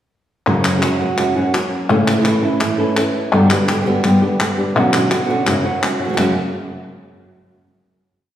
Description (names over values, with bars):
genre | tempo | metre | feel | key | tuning
flamenco | 168 BPM | 4/4 | straight | unclear | A4 = 440 Hz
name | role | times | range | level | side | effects
flamenco guitar | accompaniment | 0.5-6.3 s | F#2 to A4 | -17 LUFS | left 1 dB | none
flamenco guitar | stabs | 0.5-6.3 s | F#2 to G4 | -20 LUFS | right 3 dB | none
palmas hand claps | percussion | 0.5-6.3 s | none | -21 LUFS | left 2 dB | none
room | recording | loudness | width
wet recital hall reverb, RT60 1.8 s | recorded in a church or concert hall | -14 LUFS | side -11 dB against mid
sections
0.5-6.2 groove; 6.2-7.6 final chord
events
none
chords
0.5 F#; 1.9 A; 3.3 G; 4.8 Bmadd9; 5.5 F#